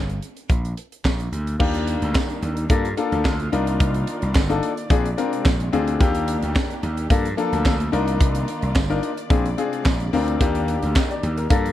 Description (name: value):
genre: early-eighties boogie funk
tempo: 109 BPM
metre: 4/4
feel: straight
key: unclear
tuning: A4 = 443 Hz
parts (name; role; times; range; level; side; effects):
- gritty slap bass; bass; 0.0-11.7 s; G1 to G2; -24 LUFS; equal; overdrive
- tight funk drum kit; drums; 0.1-11.7 s; crash cymbal, handclaps, hi-hat, kick drum, snare drum; -21 LUFS; equal; none
- tambourine; percussion; 1.1-11.1 s; none; -40 LUFS; right 11 dB; none
- clear grand piano; accompaniment; 1.6-11.7 s; Bb3 to Eb5; -24 LUFS; left 5 dB; none
- warm studio string section; sustained chords; 1.6-11.7 s; Bb2 to D5; -32 LUFS; right 1 dB; none
room: light reverb, small room ambience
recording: dark, warm production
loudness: -19 LUFS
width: side -13 dB against mid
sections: 0.0-1.6 A section; 1.6-11.7 B section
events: none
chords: 0.5 Bb; 1.6 Ebmaj7; 2.7 Gm9; 3.5 Cm11; 4.9 Bb9; 6.0 Ebmaj7; 7.1 Gm9; 7.9 Cm11; 9.3 Bb9; 10.4 Ebmaj7